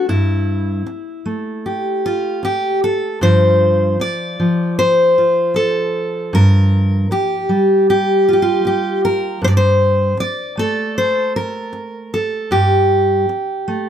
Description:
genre	folk, solo fingerstyle acoustic guitar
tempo	77 BPM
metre	4/4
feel	straight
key	G dorian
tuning	A4 = 437 Hz
part	fingerpicked steel-string acoustic guitar	solo	0.0-13.9 s	G2 to D5	-14 LUFS	equal	none
room	little or no reverb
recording	close, detailed microphones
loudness	-14 LUFS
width	side -9 dB against mid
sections	0.0-13.9 A section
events	none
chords	0.1 A5/G; 3.2 F/G; 6.3 Gm7; 9.4 Gsus2

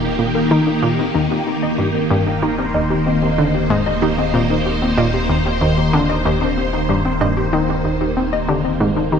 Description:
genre	ambient, sequencer-driven space music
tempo	94 BPM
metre	4/4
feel	straight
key	Eb major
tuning	A4 = 439 Hz
part	phased string machine	sustained chords	0.0-9.2 s	Eb3 to C5	-19 LUFS	equal	ensemble chorus, phaser
part	warbly dusty pluck	arpeggios	0.0-9.2 s	C4 to Eb5	-23 LUFS	moving between left 8 dB and right 1 dB	chorus, auto-pan, tape echo
part	analog pluck	riff	0.0-9.2 s	Eb2 to Eb3	-19 LUFS	equal	chorus, tape echo
part	round analog bass	bass	0.0-9.2 s	Eb1	-26 LUFS	equal	none
room	wet lush hall reverb, RT60 2.8 s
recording	lossy compression artefacts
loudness	-15 LUFS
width	side -7 dB against mid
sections	0.0-9.2 A section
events	none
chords	0.0 Eb6

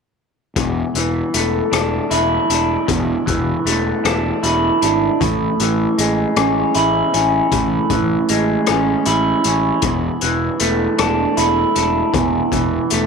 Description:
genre	psychedelic rock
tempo	52 BPM (dotted quarters)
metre	6/8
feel	straight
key	E mixolydian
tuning	A4 = 439 Hz
part	electric guitar through a small old amp	riff	0.6-13.1 s	E2 to E4	-16 LUFS	right 1 dB	phaser
part	fuzz fingered electric bass	bass	0.6-13.1 s	E1 to A1	-22 LUFS	equal	overdrive
part	raw garage drum kit	drums	0.6-13.1 s	hi-hat, kick drum, rim click	-22 LUFS	left 8 dB	none
room	light reverb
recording	1960s-style stereo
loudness	-15 LUFS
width	side -5 dB against mid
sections	0.6-13.1 A section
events	none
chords	0.6 E7sus4; 5.2 Amaj7; 9.8 E7sus4

